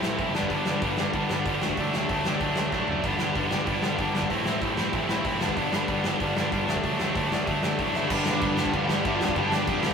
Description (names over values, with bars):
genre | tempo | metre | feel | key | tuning
punk rock | 190 BPM | 4/4 | straight | G major | A4 = 441 Hz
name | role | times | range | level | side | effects
tight distorted guitar | riff | 0.0-9.9 s | G2 to E4 | -26 LUFS | equal | distortion
fuzz picked electric bass | bass | 0.0-9.9 s | E1 to F2 | -33 LUFS | equal | overdrive
big rock drum kit | drums | 0.0-9.9 s | crash cymbal, hi-hat, kick drum, snare drum, toms | -29 LUFS | left 1 dB | none
dark smooth lead guitar | melody | 8.0-9.9 s | D4 to A5 | -31 LUFS | equal | overdrive
tight distorted guitar | riff | 8.1-9.9 s | G2 to G3 | -35 LUFS | equal | none
room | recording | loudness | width
light reverb | rough rehearsal-room recording, tube saturation | -23 LUFS | side -6 dB against mid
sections
0.0-8.1 A section; 8.1-9.9 B section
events
drum fill 2.7-3.0, 7.9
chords
0.3 G; 1.6 D; 3.0 G; 4.3 Am; 5.4 G; 6.7 D; 8.1 G